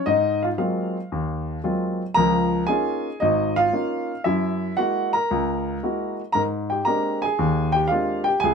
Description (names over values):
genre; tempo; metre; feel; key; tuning
solo jazz; 115 BPM; 4/4; swing 69% on 8ths; unclear; A4 = 440 Hz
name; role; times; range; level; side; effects
warm upright piano; solo; 0.0-8.5 s; Ab1 to Bb5; -20 LUFS; equal; none
room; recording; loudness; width
light reverb; minimal, uncompressed stereo recording; -20 LUFS; side -6 dB against mid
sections
0.0-8.5 A section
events
none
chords
0.1 Ab13; 2.2 Db69; 4.2 Gb9; 6.3 Abmaj9#11